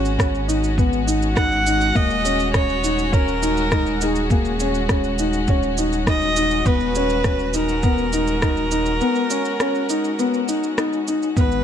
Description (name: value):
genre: piano and strings electronica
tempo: 102 BPM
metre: 4/4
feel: straight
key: unclear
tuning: A4 = 440 Hz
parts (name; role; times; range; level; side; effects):
- warm viola; melody; 0.0-11.6 s; F#4 to F#5; -24 LUFS; right 1 dB; tape echo
- dark chamber string section; sustained chords; 0.0-11.6 s; D#3 to F#4; -27 LUFS; left 2 dB; none
- dark grand piano; riff; 0.0-11.6 s; A#3 to D#4; -22 LUFS; left 2 dB; tape echo
- round analog bass; bass; 0.0-11.6 s; D#1 to G#1; -26 LUFS; equal; sidechain pumping
- electronic shaker and rim click; drums; 0.1-11.6 s; none; -27 LUFS; equal; small room reverb
- electronic kick drum; drums; 0.2-11.5 s; none; -19 LUFS; equal; small room reverb
room: light reverb, small room ambience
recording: dark, warm production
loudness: -17 LUFS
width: side -9 dB against mid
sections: 0.0-11.6 A section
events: none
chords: 0.0 G#7(no3); 2.0 D#7sus4; 6.7 Bmaj7/D#